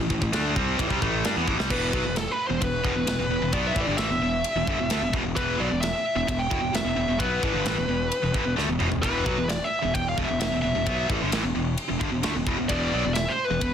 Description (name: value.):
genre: heavy metal.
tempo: 131 BPM.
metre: 4/4.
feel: straight.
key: E minor.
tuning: A4 = 440 Hz.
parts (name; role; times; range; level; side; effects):
high-gain distorted guitar; riff; 0.0-13.7 s; E2 to D4; -26 LUFS; equal; distortion.
fuzz fingered electric bass; bass; 0.0-13.7 s; E1 to G2; -31 LUFS; equal; overdrive.
tight metal drum kit; drums; 0.1-13.7 s; crash cymbal, kick drum, ride cymbal, snare drum, toms; -30 LUFS; equal; none.
high-gain lead guitar; melody; 1.7-13.7 s; A4 to G5; -28 LUFS; equal; distortion.
room: light reverb.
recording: dense, heavily limited modern master.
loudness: -22 LUFS.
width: side -8 dB against mid.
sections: 0.0-1.7 A section; 1.7-13.7 B section.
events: drum fill 1.5, 8.6-9.0.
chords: 0.0 A5; 1.7 E5.